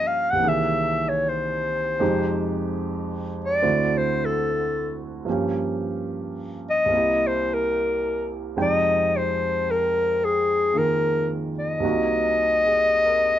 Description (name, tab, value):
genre	jazz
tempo	74 BPM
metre	4/4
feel	swing 66% on 8ths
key	F minor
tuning	A4 = 439 Hz
part	warm clarinet	melody	0.0-13.4 s	Ab4 to Gb5	-21 LUFS	left 2 dB	plate reverb
part	warm grand piano	accompaniment	0.0-13.4 s	C2 to G5	-26 LUFS	right 3 dB	none
room	moderate club reverb, RT60 0.6 s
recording	nothing above 7.5 kHz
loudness	-20 LUFS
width	side -11 dB against mid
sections	0.0-8.6 A section; 8.6-13.4 B section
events	clarinet solo 0.0-8.6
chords	0.4 C7alt; 2.0 Fm9; 3.6 D7; 5.3 Gm7b5; 6.9 C7; 8.6 Fm9; 11.8 Cm7b5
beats	0.39 1.20 | 2.01 2.82 3.64 4.45 | 5.26 6.08 6.91 7.74 | 8.57 9.39 10.21 11.02 | 11.83 12.64